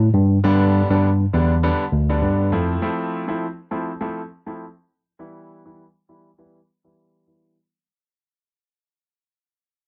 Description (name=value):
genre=afrobeats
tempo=101 BPM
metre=4/4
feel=swing 55% on 16ths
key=unclear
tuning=A4 = 439 Hz
part: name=tine electric piano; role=bass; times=0.0-2.8 s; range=D2 to G2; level=-19 LUFS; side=equal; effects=none
part: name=bright concert grand piano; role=accompaniment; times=0.4-7.6 s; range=D3 to E4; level=-26 LUFS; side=equal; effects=cassette tape
room=little or no reverb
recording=home recording on cassette, low-pass filter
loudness=-20 LUFS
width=mono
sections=0.0-7.6 A section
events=fade-out 0.0-7.6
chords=0.0 G; 2.5 Fmaj7; 5.2 Em